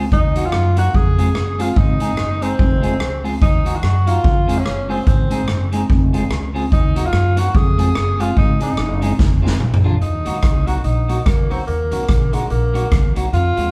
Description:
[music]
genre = ska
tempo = 145 BPM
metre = 4/4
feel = swing 59% on 8ths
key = Eb dorian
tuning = A4 = 441 Hz
[part]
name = clean electric guitar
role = accompaniment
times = 0.0-13.7 s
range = F3 to Ab4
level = -27 LUFS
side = equal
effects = spring reverb, dub echo
[part]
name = upright bass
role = bass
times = 0.0-13.7 s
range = F1 to Gb2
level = -22 LUFS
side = equal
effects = none
[part]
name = warm tenor saxophone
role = melody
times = 0.1-13.7 s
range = Ab3 to Ab4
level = -25 LUFS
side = equal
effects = none
[part]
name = street-band drum kit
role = drums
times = 0.1-13.7 s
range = hi-hat, kick drum, rim click, snare drum, toms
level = -20 LUFS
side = equal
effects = none
[sound]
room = moderate large studio reverb, RT60 1.3 s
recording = band playing live in one room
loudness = -17 LUFS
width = mono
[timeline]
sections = 0.0-10.0 A section; 10.0-13.7 B section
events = drum fill 9.2-10.0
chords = 0.1 Ebm; 0.9 Fm; 1.8 Ab; 2.6 Fm; 3.4 Ebm; 4.2 Fm; 5.1 Ab; 5.9 Fm; 6.7 Ebm; 7.5 Fm; 8.4 Ab; 9.2 Fm; 9.6 Bb; 10.0 Ebm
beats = | 0.12 0.53 0.94 1.35 | 1.77 2.18 2.59 3.00 | 3.42 3.83 4.24 4.66 | 5.07 5.48 5.89 6.30 | 6.72 7.13 7.54 7.96 | 8.37 8.78 9.20 9.61 | 10.02 10.44 10.85 11.26 | 11.68 12.09 12.50 12.91 | 13.33

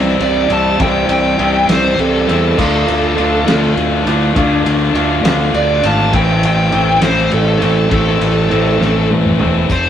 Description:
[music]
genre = indie rock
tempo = 68 BPM (dotted quarters)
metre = 6/8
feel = straight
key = unclear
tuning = A4 = 440 Hz
[part]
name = tine electric piano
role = second line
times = 0.0-9.4 s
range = D4 to G4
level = -26 LUFS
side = left 2 dB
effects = none
[part]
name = electric guitar through a small old amp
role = riff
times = 0.0-9.7 s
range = A2 to F4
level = -18 LUFS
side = right 2 dB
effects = none
[part]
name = high-gain distorted guitar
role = riff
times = 0.0-9.9 s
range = F2 to F4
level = -19 LUFS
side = left 5 dB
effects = distortion
[part]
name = fuzz fingered electric bass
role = bass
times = 0.0-9.9 s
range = E1 to E2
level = -16 LUFS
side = equal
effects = overdrive
[part]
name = bluesy overdriven lead guitar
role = melody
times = 0.2-9.9 s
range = A4 to A5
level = -17 LUFS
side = right 1 dB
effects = distortion
[part]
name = cloth-damped thuddy drum kit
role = drums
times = 0.2-9.8 s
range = crash cymbal, hi-hat, kick drum, ride cymbal, snare drum, toms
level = -20 LUFS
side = equal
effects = none
[sound]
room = moderate stone room reverb, RT60 1.1 s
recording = rough rehearsal-room recording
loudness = -11 LUFS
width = side -9 dB against mid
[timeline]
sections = 0.0-9.7 A section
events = lead electric guitar solo 0.0-9.7; drum fill 8.8-9.7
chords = 0.0 C; 2.6 Dm; 6.1 Am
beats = | 0.81 1.70 | 2.58 3.47 | 4.36 5.25 | 6.14 7.03 | 7.92 8.81 | 9.70

